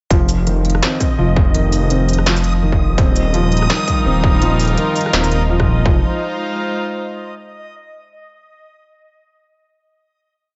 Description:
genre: half-time drum and bass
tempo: 167 BPM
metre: 4/4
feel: swing 57% on 16ths, half-time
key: F minor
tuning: A4 = 440 Hz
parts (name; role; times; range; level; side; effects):
- felt-muted upright piano; arpeggios; 0.1-6.0 s; Eb3 to C4; -23 LUFS; equal; dub echo
- dark detuned saw bass; bass; 0.1-6.0 s; Eb1 to F1; -19 LUFS; equal; none
- electronic kick drum; drums; 0.1-5.9 s; none; -18 LUFS; equal; distortion, studio reverb
- industrial drum kit; drums; 0.1-5.7 s; hi-hat, rim click, shaker, snare drum; -23 LUFS; equal; studio reverb
- backwards swelling texture; texture; 0.8-5.9 s; Eb5; -29 LUFS; equal; built-in reverb
- warm chamber string section; sustained chords; 3.0-7.3 s; G3 to C5; -24 LUFS; equal; sidechain pumping
room: light reverb, digital ambience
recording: nothing above 7.8 kHz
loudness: -16 LUFS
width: mono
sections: 0.1-5.9 drop; 5.9-7.3 final chord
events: drop 0.1-5.9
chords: 0.1 F5; 3.0 Ebadd9; 5.9 Fm7

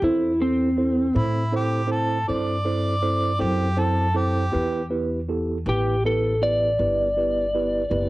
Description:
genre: blues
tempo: 53 BPM (dotted quarters)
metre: 12/8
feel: straight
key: unclear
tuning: A4 = 440 Hz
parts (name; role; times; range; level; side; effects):
- electric slide guitar; melody; 0.0-8.1 s; C4 to D5; -22 LUFS; equal; cassette tape
- mellow tine electric piano; accompaniment; 0.0-8.1 s; B3 to C5; -26 LUFS; right 2 dB; medium stereo tremolo, cassette tape
- upright bass; bass; 0.0-8.1 s; F#1 to A2; -26 LUFS; equal; none
- clear harmonica; second line; 1.2-4.9 s; E4 to D5; -26 LUFS; equal; overdrive, cassette tape
room: light reverb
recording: home recording on cassette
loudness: -20 LUFS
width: side -18 dB against mid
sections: 0.0-8.1 A section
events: none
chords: 0.0 Am; 4.5 Em

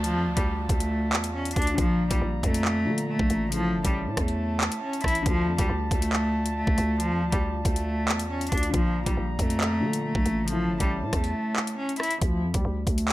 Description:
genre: hip hop, drill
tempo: 138 BPM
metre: 4/4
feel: half-time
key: D harmonic minor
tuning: A4 = 440 Hz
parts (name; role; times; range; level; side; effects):
- rich cello; melody; 0.0-13.1 s; F3 to E4; -27 LUFS; equal; low-pass filter, digital delay
- felt-muted upright piano; accompaniment; 0.0-12.2 s; Bb2 to F4; -34 LUFS; left 4 dB; low-pass filter
- clear brass ensemble; sustained chords; 0.0-12.2 s; E4 to Bb5; -35 LUFS; right 2 dB; none
- growling 808-style bass; bass; 0.0-13.1 s; G1 to D3; -29 LUFS; equal; none
- drill drum kit; drums; 0.0-13.1 s; handclaps, hi-hat, kick drum, rim click; -27 LUFS; equal; none
- downlifter; sound effects; 0.0-1.8 s; none; -45 LUFS; equal; none
room: small room ambience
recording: none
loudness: -23 LUFS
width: side -16 dB against mid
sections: 0.0-12.2 A section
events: kick muted 11.3-12.2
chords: 0.0 Dm; 1.8 Bb; 3.5 A; 5.3 Dm; 8.7 Bb; 10.5 A; 12.2 Dm

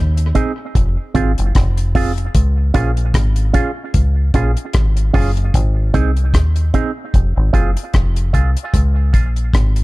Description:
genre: dub reggae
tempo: 75 BPM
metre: 4/4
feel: swing 56% on 16ths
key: Db major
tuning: A4 = 440 Hz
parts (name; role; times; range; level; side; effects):
- deep dub fingered electric bass; bass; 0.0-9.8 s; F1 to Eb2; -15 LUFS; equal; none
- deep reggae drum kit; drums; 0.2-9.8 s; hi-hat, kick drum, rim click; -16 LUFS; equal; none
- electric guitar with an envelope filter; accompaniment; 0.3-9.3 s; C4 to Ab4; -23 LUFS; right 5 dB; high-pass filter, tape echo
room: small room reverb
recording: dark, warm production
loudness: -13 LUFS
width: side -20 dB against mid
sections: 0.0-9.8 A section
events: filter sweep on clean electric guitar 5.5-9.8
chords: 0.0 Ab; 0.8 Fm; 2.4 Db; 5.5 Ab; 7.1 Fm; 8.7 Db

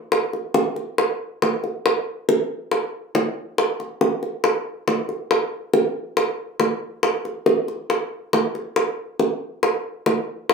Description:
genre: latin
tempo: 139 BPM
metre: 4/4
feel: straight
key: none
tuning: none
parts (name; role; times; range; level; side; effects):
- bongos; percussion; 0.1-10.5 s; none; -20 LUFS; equal; none
room: wet studio reverb, RT60 0.5 s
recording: band playing live in one room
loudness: -20 LUFS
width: side -5 dB against mid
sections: 0.0-10.5 A section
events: none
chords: none

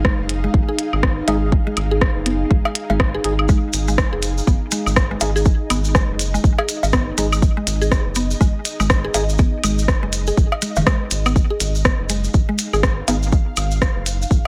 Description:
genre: minimal techno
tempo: 122 BPM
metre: 4/4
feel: swing 59% on 16ths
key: unclear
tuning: A4 = 440 Hz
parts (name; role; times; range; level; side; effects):
- mallet-like synth pluck; riff; 0.0-13.1 s; D#3 to G#4; -28 LUFS; equal; analog chorus, sidechain pumping, tape echo
- rubbery square bass; bass; 0.0-14.4 s; F#1 to G#1; -24 LUFS; equal; sidechain pumping
- electronic kick drum; drums; 0.0-14.4 s; none; -19 LUFS; equal; none
- minimal click drum kit; drums; 0.0-14.2 s; hi-hat, rim click; -24 LUFS; equal; none
- ethereal airy pad; texture; 0.0-14.5 s; D#4 to E#5; -31 LUFS; equal; ensemble chorus, built-in reverb, sidechain pumping
- woodblock and cowbell; percussion; 0.9-13.7 s; none; -25 LUFS; equal; none
- percussive organ stab; stabs; 1.3-9.2, 13.1-13.2 s; G#3 to G#4; -29 LUFS; equal; ensemble chorus, tape echo
- maracas; percussion; 3.5-14.4 s; none; -30 LUFS; equal; none
room: little or no reverb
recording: none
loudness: -18 LUFS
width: mono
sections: 0.0-14.5 A section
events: none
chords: 0.0 G#5

